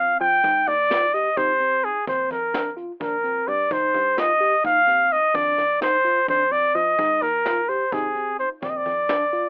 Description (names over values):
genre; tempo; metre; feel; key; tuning
progressive instrumental, band music in an uneven meter; 256 BPM (eighths); 7/8; straight; Ab lydian; A4 = 440 Hz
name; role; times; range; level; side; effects
warm trumpet; melody; 0.0-9.5 s; Ab4 to G5; -18 LUFS; equal; none
mellow tine electric piano; arpeggios; 0.0-9.5 s; C4 to G4; -32 LUFS; equal; medium stereo tremolo, digital delay
picked electric bass; bass; 0.0-9.4 s; Bb1 to F3; -36 LUFS; equal; none
jazz brush drum kit; drums; 0.2-9.4 s; hi-hat, kick drum, snare drum; -31 LUFS; equal; none
room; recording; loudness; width
light reverb; rough home demo mix, telephone sound; -18 LUFS; side -38 dB against mid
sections
0.0-9.5 A section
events
none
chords
0.4 Ab (rootless); 2.1 Bbadd9; 3.7 Cm; 5.3 F5; 7.0 Ab; 8.6 Bbadd9